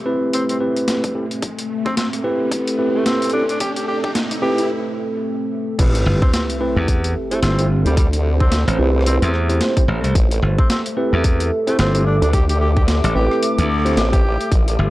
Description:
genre	glitch hop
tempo	110 BPM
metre	4/4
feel	swing 59% on 16ths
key	A minor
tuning	A4 = 443 Hz
part	dark analog pad	sustained chords	0.0-14.9 s	A3 to A4	-25 LUFS	equal	chorus, phaser, sidechain pumping
part	riser and sub drop	sound effects	0.5-8.0 s	none	-30 LUFS	equal	none
part	warbly tape-like pad	texture	0.0-14.9 s	A4 to D6	-29 LUFS	right 1 dB	chorus, built-in reverb, sidechain pumping
part	mellow tine electric piano	stabs	0.1-14.2 s	C4 to C5	-22 LUFS	equal	vintage 12-bit sampler grit, sidechain pumping, low-pass filter, analog delay
part	breathy tenor saxophone	melody	0.3-14.5 s	G3 to G4	-26 LUFS	equal	analog delay
part	boom bap sampler-style drum kit	drums	0.3-14.8 s	crash cymbal, hi-hat, rim click, snare drum	-25 LUFS	equal	overdrive
part	electronic kick drum	drums	1.0-14.6 s	none	-16 LUFS	equal	high-pass filter on kick, high-pass filter on room
part	formant-sweep wobble bass	bass	5.8-14.8 s	A1 to D2	-17 LUFS	equal	chorus, tube saturation
part	glassy slap bass	bass	6.1-14.9 s	G1 to E2	-17 LUFS	equal	none
room	digital ambience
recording	dry, gritty hardware recording, cassette tape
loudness	-16 LUFS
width	side -17 dB against mid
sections	0.0-5.8 A section; 5.8-14.9 B section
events	build-up 0.0-5.8; filter sweep on tine electric piano 0.0-5.8; riser 0.5-4.7; break 4.7-5.8; drop 5.8-14.9; impact 5.8-8.0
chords	0.0 Am7

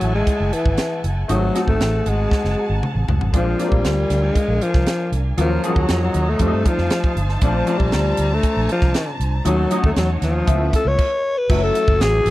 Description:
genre	polished 1980s jazz-funk pop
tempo	118 BPM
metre	4/4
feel	straight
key	unclear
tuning	A4 = 437 Hz
part	breathy alto saxophone	melody	0.0-12.3 s	E3 to C#5	-21 LUFS	left 2 dB	none
part	clear grand piano	accompaniment	0.0-12.3 s	E#3 to A4	-26 LUFS	left 2 dB	ensemble chorus
part	warm studio string section	sustained chords	0.0-12.3 s	E3 to A#5	-29 LUFS	right 2 dB	none
part	vintage muted fingered electric bass	bass	0.0-12.3 s	F#1 to G2	-20 LUFS	equal	none
part	crisp fusion drum kit	drums	0.0-12.3 s	crash cymbal, hi-hat, kick drum, snare drum, toms	-20 LUFS	equal	none
room	little or no reverb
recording	dry, close 1970s-style studio recording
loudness	-16 LUFS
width	side -16 dB against mid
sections	0.0-11.5 A section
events	drum fill 2.3-3.3; stop 11.0-11.5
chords	0.0 F#m9; 1.3 G#7b9; 3.3 A#7; 5.4 D#m7; 6.4 F7; 7.4 A#maj9; 9.5 D#m7b5; 10.5 C#7alt; 11.5 F#m9

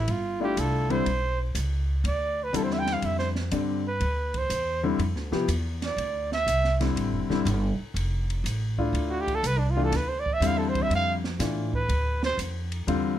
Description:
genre	modal jazz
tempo	122 BPM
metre	4/4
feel	swing 68% on 8ths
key	D dorian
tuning	A4 = 439 Hz
part	warm trumpet	melody	0.0-12.4 s	D4 to G5	-28 LUFS	right 3 dB	none
part	upright bass	bass	0.0-13.2 s	D1 to A2	-28 LUFS	equal	none
part	open jazz drum kit	drums	0.1-13.0 s	hi-hat, kick drum, ride cymbal, snare drum	-36 LUFS	right 2 dB	none
part	warm baby grand piano	accompaniment	0.4-13.2 s	D3 to G4	-28 LUFS	left 4 dB	none
room	moderate studio reverb, RT60 0.7 s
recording	none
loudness	-24 LUFS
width	side -11 dB against mid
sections	0.0-13.2 A section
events	trumpet solo 0.0-13.2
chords	0.0 Gsus4; 4.0 Dm9; 11.9 Gsus4

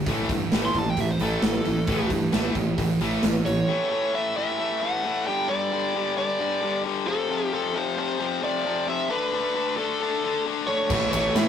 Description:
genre	hard rock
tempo	133 BPM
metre	4/4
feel	straight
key	unclear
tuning	A4 = 441 Hz
part	heavy high-gain guitar	riff	0.0-3.7, 10.9-11.5 s	A2 to A3	-28 LUFS	right 4 dB	distortion
part	overdriven electric guitar	riff	0.0-11.5 s	F2 to D4	-27 LUFS	left 6 dB	none
part	sludgy distorted guitar	riff	0.0-3.7, 10.9-11.5 s	A2 to A3	-35 LUFS	equal	none
part	fuzz picked electric bass	bass	0.1-3.6, 10.9-11.5 s	A1 to A2	-28 LUFS	right 1 dB	overdrive
part	big rock drum kit	drums	0.1-3.6, 10.9-11.5 s	crash cymbal, hi-hat, kick drum, ride cymbal, snare drum	-27 LUFS	right 1 dB	none
part	bluesy overdriven lead guitar	melody	0.7-11.5 s	A4 to C6	-26 LUFS	right 1 dB	distortion
part	octave-fuzz lead guitar	second line	10.7-11.5 s	A3 to C#4	-34 LUFS	right 1 dB	none
room	moderate small room reverb, RT60 0.5 s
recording	rough rehearsal-room recording, tube saturation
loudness	-22 LUFS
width	side -8 dB against mid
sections	0.0-3.7 A section; 3.7-11.5 B section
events	lead electric guitar solo 0.0-3.7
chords	0.1 A5; 5.3 G5; 7.1 F; 9.1 D5; 10.9 A

